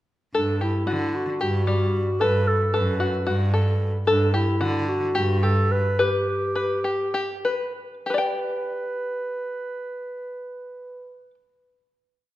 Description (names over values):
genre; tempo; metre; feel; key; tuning
contemporary instrumental, chamber music in an uneven meter; 190-225 BPM (eighths); 7/8; straight; G major; A4 = 440 Hz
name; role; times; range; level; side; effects
open-back banjo; arpeggios; 0.3-11.3 s; G3 to G5; -26 LUFS; left 2 dB; none
clear cello; bass; 0.3-5.8 s; F#2 to D3; -24 LUFS; right 1 dB; none
mellow clarinet; melody; 0.4-11.2 s; D4 to B4; -26 LUFS; equal; none
room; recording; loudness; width
wet recital hall reverb, RT60 1.8 s; dark, warm production; -21 LUFS; side -15 dB against mid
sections
0.3-8.1 A section; 8.1-12.4 final chord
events
slowing down 4.1-8.1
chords
0.3 G5; 2.2 B5; 4.1 G5; 6.0 G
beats
| 0.34 0.61 0.88 1.14 1.41 1.68 1.94 | 2.21 2.48 2.74 3.01 3.28 3.54 3.81 | 4.08 4.35 4.62 4.88 5.16 5.43 5.71 | 5.99 6.27 6.56 6.85 7.15 7.45 7.75 | 8.07 8.38 8.70 9.01 9.33 9.64 9.96 | 10.27 10.59 10.90 11.22